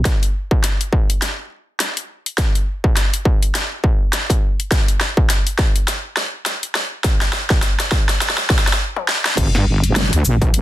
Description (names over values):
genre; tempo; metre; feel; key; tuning
glitch hop; 103 BPM; 4/4; swing 58% on 16ths; G minor; A4 = 440 Hz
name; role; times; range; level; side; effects
wobble bass; bass; 0.0, 9.4-10.6 s; G1 to G2; -16 LUFS; equal; chorus, overdrive
dubstep drum kit; drums; 0.1-10.6 s; crash cymbal, hi-hat, shaker, snare drum, toms; -19 LUFS; equal; high-pass filter on snare, low-pass filter on snare, high-pass filter on hats, low-pass filter on hats, high-pass filter on toms, low-pass filter on toms, high-pass filter on cymbals, low-pass filter on cymbals, high-pass filter on perc, low-pass filter on perc
electronic kick drum; drums; 0.1-10.5 s; none; -16 LUFS; equal; distortion
room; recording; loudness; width
light reverb; dense, heavily limited modern master; -16 LUFS; side -14 dB against mid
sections
0.1-9.4 A section; 9.4-10.6 B section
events
build-up 0.1-9.4; drum fill 0.1-8.8, 8.9-9.4; stop 8.8-9.4; drop 9.4-10.6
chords
none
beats
| 0.06 0.64 1.22 1.80 | 2.38 2.97 3.55 4.13 | 4.71 5.30 5.88 6.46 | 7.04 7.63 8.21 8.79 | 9.38 9.96 10.54